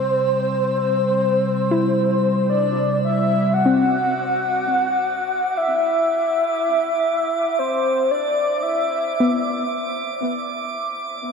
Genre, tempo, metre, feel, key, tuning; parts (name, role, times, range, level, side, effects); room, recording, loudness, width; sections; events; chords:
ambient; free time; C lydian; A4 = 442 Hz
breathy flute-like synth lead; melody; 0.0-9.6 s; C5 to F#5; -19 LUFS; equal; analog chorus, diffuse ambient delay
analog drone; drone; 0.0-3.6 s; C3 to G3; -23 LUFS; equal; chorus
drifting glass-harmonics texture; texture; 0.0-11.3 s; D6 to E6; -32 LUFS; right 3 dB; chorus, built-in reverb
soft round pluck; arpeggios; 1.7-11.3 s; B3 to E4; -23 LUFS; left 3 dB; chorus, diffuse ambient delay
wet lush hall reverb, RT60 2.9 s; -18 LUFS; side -5 dB against mid
0.0-3.5 A section; 3.5-11.3 B section
0.0 Cadd9; 3.5 Cmaj7